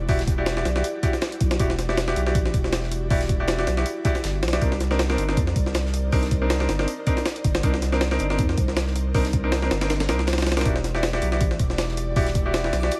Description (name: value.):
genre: drum and bass, jungle.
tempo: 159 BPM.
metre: 4/4.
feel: swing 55% on 16ths.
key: E minor.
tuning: A4 = 443 Hz.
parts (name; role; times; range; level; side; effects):
ethereal airy pad; sustained chords; 0.0-13.0 s; Eb4 to D5; -36 LUFS; equal; none.
saturated sub bass; bass; 0.0-12.9 s; E1 to F2; -28 LUFS; equal; none.
bright grand piano; stabs; 0.1-12.9 s; C4 to D5; -30 LUFS; equal; dub echo.
jungle sampler-style drum kit; drums; 0.1-13.0 s; hi-hat, kick drum, snare drum; -26 LUFS; equal; none.
modern studio drum kit; drums; 0.1-13.0 s; hi-hat, snare drum; -41 LUFS; equal; none.
backwards swelling texture; texture; 11.6-13.0 s; D5 to D6; -39 LUFS; equal; built-in reverb.
room: light reverb, studio reverb.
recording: vinyl crackle.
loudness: -23 LUFS.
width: mono.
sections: 0.0-13.0 A section.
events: none.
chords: 0.0 Em9; 4.6 Cm9; 10.7 Em9.